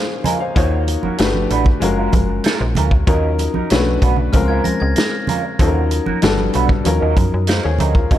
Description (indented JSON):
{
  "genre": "lush 1970s-style soul",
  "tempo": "95 BPM",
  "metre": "4/4",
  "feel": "straight",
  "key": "unclear",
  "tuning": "A4 = 440 Hz",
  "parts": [
    { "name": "clear grand piano", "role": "accompaniment", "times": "0.0-8.2 s", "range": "Gb3 to Ab5", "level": "-20 LUFS", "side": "left 4 dB", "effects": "tube saturation" },
    { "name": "electric guitar through a small old amp", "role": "riff", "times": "0.2-8.2 s", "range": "Gb3 to C5", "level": "-24 LUFS", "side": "right 9 dB", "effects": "wah" },
    { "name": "congas", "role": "percussion", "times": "0.2-7.9 s", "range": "none", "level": "-25 LUFS", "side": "right 4 dB", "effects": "none" },
    { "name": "vintage drum kit", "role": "drums", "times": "0.3-8.2 s", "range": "hi-hat, kick drum, snare drum", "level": "-18 LUFS", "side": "equal", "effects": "none" },
    { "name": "slap-like FM bass", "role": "bass", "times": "0.6-8.2 s", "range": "Gb1 to Gb2", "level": "-19 LUFS", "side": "equal", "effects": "none" },
    { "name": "glockenspiel with brass mallets", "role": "texture", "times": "4.3-5.6 s", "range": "F6 to Bb6", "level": "-28 LUFS", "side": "left 1 dB", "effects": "none" }
  ],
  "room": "light reverb",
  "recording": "dark, warm production",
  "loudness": "-14 LUFS",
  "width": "side -12 dB against mid",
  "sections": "0.0-8.1 A section",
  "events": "none",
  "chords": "0.0 Bbm7; 0.6 Ebm7; 1.2 Gmaj9; 1.8 Gbmaj9; 3.1 Ebm7; 3.7 Bm7; 4.3 Bbm7/Db; 5.6 Ebm7; 6.2 Gmaj9; 6.9 Ebm7"
}